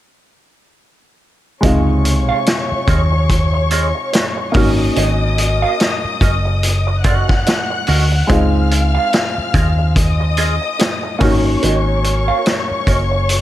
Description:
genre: lush 1970s-style soul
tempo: 72 BPM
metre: 4/4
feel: swing 58% on 16ths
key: Db major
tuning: A4 = 440 Hz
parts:
  - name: warm studio string section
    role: second line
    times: 1.6-13.4 s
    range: Db5 to Gb6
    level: -21 LUFS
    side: left 3 dB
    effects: none
  - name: warm grand piano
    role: accompaniment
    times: 1.6-13.4 s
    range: C3 to Gb4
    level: -22 LUFS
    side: left 1 dB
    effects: none
  - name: electric guitar through a small old amp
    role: riff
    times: 1.6-13.2 s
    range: C4 to F5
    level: -23 LUFS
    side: right 7 dB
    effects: wah
  - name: hollow-body short-scale fingered electric bass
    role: bass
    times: 1.6-13.4 s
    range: Gb1 to Eb2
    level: -16 LUFS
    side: equal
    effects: none
  - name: vintage drum kit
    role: drums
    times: 1.6-13.4 s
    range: hi-hat, kick drum, snare drum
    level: -17 LUFS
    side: equal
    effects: none
room: studio reverb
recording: none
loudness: -13 LUFS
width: side -13 dB against mid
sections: 1.6-13.4 A section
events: none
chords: 1.6 Dbmaj9; 4.5 Ab9sus4; 8.3 Dbmaj9; 11.2 Ab9sus4

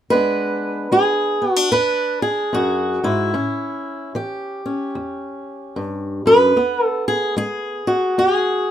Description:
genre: acoustic country blues, solo or duo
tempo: 74 BPM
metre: 4/4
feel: swing 62% on 8ths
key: E mixolydian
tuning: A4 = 441 Hz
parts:
  - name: fingerpicked swing-style acoustic guitar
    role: solo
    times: 0.1-8.7 s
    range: E2 to B4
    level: -17 LUFS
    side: equal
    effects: none
room: light reverb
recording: minimal, uncompressed stereo recording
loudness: -17 LUFS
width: side -10 dB against mid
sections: 0.1-6.6 A section; 6.6-8.7 B section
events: none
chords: 0.1 E7; 3.3 A7; 6.6 E

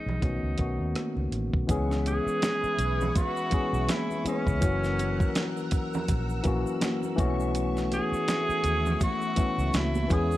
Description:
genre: lush 1970s-style soul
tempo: 82 BPM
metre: 4/4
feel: swing 58% on 16ths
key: unclear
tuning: A4 = 441 Hz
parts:
  - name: bright tenor saxophone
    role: melody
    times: 0.0-10.4 s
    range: C#4 to G#4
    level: -30 LUFS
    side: right 1 dB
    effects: none
  - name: tine electric piano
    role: accompaniment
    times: 0.0-10.4 s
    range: D#3 to G#4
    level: -30 LUFS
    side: left 3 dB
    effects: none
  - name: vintage muted fingered electric bass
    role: bass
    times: 0.1-10.4 s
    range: F#1 to E2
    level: -30 LUFS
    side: equal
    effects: none
  - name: congas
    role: percussion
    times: 0.1-10.3 s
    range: none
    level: -37 LUFS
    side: right 4 dB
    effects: none
  - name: dusty soul sampler-style drum kit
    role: drums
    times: 0.2-10.3 s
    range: hi-hat, kick drum, rim click, snare drum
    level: -29 LUFS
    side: equal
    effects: none
  - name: string machine, violins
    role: sustained chords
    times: 1.7-10.4 s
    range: A3 to E6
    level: -38 LUFS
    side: equal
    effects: ensemble chorus
  - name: egg shaker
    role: percussion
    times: 1.7-10.4 s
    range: none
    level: -50 LUFS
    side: right 7 dB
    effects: none
room: light reverb, small room ambience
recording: dark, warm production, faint mains hum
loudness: -25 LUFS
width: side -15 dB against mid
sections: 0.0-1.7 A section; 1.7-10.4 B section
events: none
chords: 0.2 B9; 1.7 C#m7; 4.6 F#7; 7.2 B9sus4

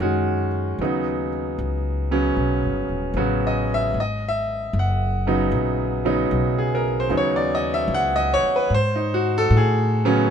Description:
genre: jazz ballad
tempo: 76 BPM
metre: 4/4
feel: swing 66% on 8ths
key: G# minor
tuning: A4 = 442 Hz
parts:
  - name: bright grand piano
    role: accompaniment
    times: 0.0-10.3 s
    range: C#3 to F#5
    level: -21 LUFS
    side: equal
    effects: none
  - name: upright bass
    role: bass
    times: 0.0-10.3 s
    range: D#1 to A2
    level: -24 LUFS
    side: equal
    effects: none
room: little or no reverb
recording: minimal, uncompressed stereo recording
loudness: -19 LUFS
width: side -8 dB against mid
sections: 0.0-10.3 A section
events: none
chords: 0.0 F#sus2; 0.8 D#m7b13; 4.0 G#m11; 7.1 C#m11; 8.7 B13/G#

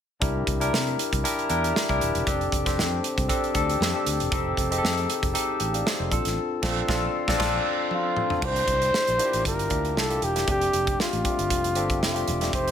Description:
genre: polished 1980s jazz-funk pop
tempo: 117 BPM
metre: 4/4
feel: swing 54% on 16ths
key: F major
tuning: A4 = 439 Hz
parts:
  - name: barky tine electric piano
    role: accompaniment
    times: 0.2-12.7 s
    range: G3 to G5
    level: -26 LUFS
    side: left 2 dB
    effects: wide subtle chorus
  - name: fretless electric bass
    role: bass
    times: 0.2-12.7 s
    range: Eb1 to C3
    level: -30 LUFS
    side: equal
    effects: none
  - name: modern studio drum kit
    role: drums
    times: 0.2-12.7 s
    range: crash cymbal, hi-hat, kick drum, snare drum, toms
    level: -27 LUFS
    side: right 2 dB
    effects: none
  - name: warm flugelhorn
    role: melody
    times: 7.9-12.7 s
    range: F4 to C5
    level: -25 LUFS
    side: equal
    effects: none
room: light reverb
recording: none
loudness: -22 LUFS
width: side -8 dB against mid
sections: 0.2-8.4 A section; 8.4-12.7 B section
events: band accent 6.4-8.4; drum fill 7.9-8.4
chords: 0.2 C7; 2.3 F6; 4.3 F7; 6.1 Bbmaj9; 8.4 C7; 10.5 F6

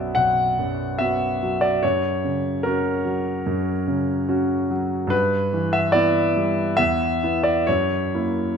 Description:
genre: classical, romantic character piece for solo piano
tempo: 72 BPM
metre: 4/4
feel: rubato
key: unclear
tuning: A4 = 443 Hz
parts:
  - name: clear concert grand piano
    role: solo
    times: 0.0-8.6 s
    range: B1 to F#5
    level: -19 LUFS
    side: equal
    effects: none
room: moderate recital hall reverb, RT60 1.6 s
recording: close, detailed microphones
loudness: -19 LUFS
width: side -6 dB against mid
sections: 0.0-8.6 A section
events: none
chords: 0.0 Bm; 1.8 F#; 5.1 Em/G; 6.8 E5; 7.7 F#7

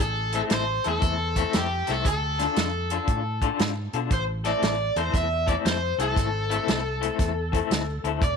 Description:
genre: electric blues shuffle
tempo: 117 BPM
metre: 4/4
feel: swing 66% on 8ths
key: A harmonic minor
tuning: A4 = 437 Hz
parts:
  - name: cranked stack guitar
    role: melody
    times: 0.0-8.3 s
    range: G4 to E5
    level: -27 LUFS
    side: equal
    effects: overdrive
  - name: fingered electric bass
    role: bass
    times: 0.0-8.4 s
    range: E1 to B2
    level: -30 LUFS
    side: right 1 dB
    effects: none
  - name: electric guitar through a small old amp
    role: riff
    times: 0.3-8.2 s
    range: D3 to A4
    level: -29 LUFS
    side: left 15 dB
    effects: tremolo
  - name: warm soul drum kit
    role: drums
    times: 0.3-8.4 s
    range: hi-hat, kick drum, snare drum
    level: -26 LUFS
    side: right 2 dB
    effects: none
room: studio ambience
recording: 1960s-style stereo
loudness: -23 LUFS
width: side -6 dB against mid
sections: 0.0-8.4 A section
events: none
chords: 0.0 Am; 2.1 Dm; 4.1 Am

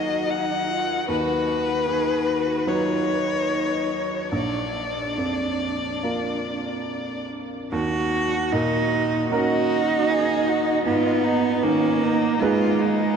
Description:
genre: neoclassical piano and strings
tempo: 70-79 BPM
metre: 4/4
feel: rubato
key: Eb minor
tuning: A4 = 440 Hz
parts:
  - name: dark violin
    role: melody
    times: 0.0-13.2 s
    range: Db4 to Gb5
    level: -26 LUFS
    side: left 4 dB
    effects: none
  - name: rich cello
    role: second line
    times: 0.0-13.2 s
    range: Ab3 to Ab4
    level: -24 LUFS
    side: right 3 dB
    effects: none
  - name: clear upright piano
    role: accompaniment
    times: 0.0-13.2 s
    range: Bb1 to B4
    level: -25 LUFS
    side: right 1 dB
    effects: none
room: wet huge ambient reverb, RT60 7.5 s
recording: in a vast, echoing space, nothing above 10.9 kHz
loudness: -20 LUFS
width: side -6 dB against mid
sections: 0.0-7.7 A section; 7.7-13.2 B section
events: none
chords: 0.0 Ebmadd9; 1.1 B/D#; 4.3 Bb; 7.7 Ebm7; 10.9 Abm

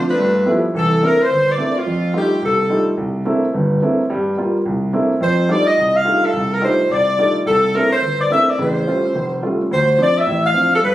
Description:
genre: jazz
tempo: 214 BPM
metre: 4/4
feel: swing 61% on 8ths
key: C mixolydian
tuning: A4 = 441 Hz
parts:
  - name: clear saxophone section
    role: melody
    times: 0.0-2.9, 5.2-10.9 s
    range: A3 to F5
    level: -16 LUFS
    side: left 1 dB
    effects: plate reverb
  - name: warm concert grand piano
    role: accompaniment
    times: 0.0-10.9 s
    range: E#1 to F4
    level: -18 LUFS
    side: right 1 dB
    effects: none
room: moderate large studio reverb, RT60 1.0 s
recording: recorded on a phone in the room, club reverb, compression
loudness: -14 LUFS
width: side -14 dB against mid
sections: 0.7-10.9 A section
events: none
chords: 0.2 G13; 0.7 C13; 1.9 F13; 3.0 C13; 4.1 Gm7; 4.7 C13; 5.2 F13; 7.5 C13; 8.6 A7alt; 9.7 Dm7

